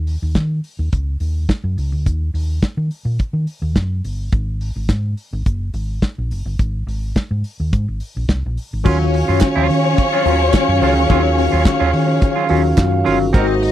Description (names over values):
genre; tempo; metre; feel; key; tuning
disco; 106 BPM; 4/4; straight; Eb dorian; A4 = 441 Hz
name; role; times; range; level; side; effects
hollow-body short-scale fingered electric bass; bass; 0.0-13.7 s; Gb1 to Eb3; -19 LUFS; equal; none
warm soul drum kit; drums; 0.1-13.7 s; crash cymbal, hi-hat, kick drum, snare drum; -15 LUFS; equal; none
clean electric guitar; accompaniment; 8.8-13.7 s; Gb3 to Bb4; -22 LUFS; right 7 dB; none
mellow tine electric piano; accompaniment; 8.8-13.7 s; Eb3 to C5; -20 LUFS; left 4 dB; medium stereo tremolo
warm studio string section; second line; 8.9-13.7 s; Db4 to Eb5; -19 LUFS; left 2 dB; none
mellow French horn section; sustained chords; 8.9-13.7 s; C3 to F5; -22 LUFS; right 5 dB; none
group handclap; percussion; 9.4-12.9 s; none; -30 LUFS; right 10 dB; none
room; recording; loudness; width
little or no reverb; dry, close 1970s-style studio recording; -15 LUFS; side -12 dB against mid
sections
0.0-8.8 A section; 8.8-13.7 B section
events
none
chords
0.0 N.C.; 8.8 Ebm9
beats
0.35 0.92 1.49 | 2.06 2.63 3.20 3.76 | 4.33 4.90 5.46 6.03 | 6.59 7.16 7.72 8.29 | 8.85 9.41 9.97 10.54 | 11.10 11.66 12.22 12.78 | 13.34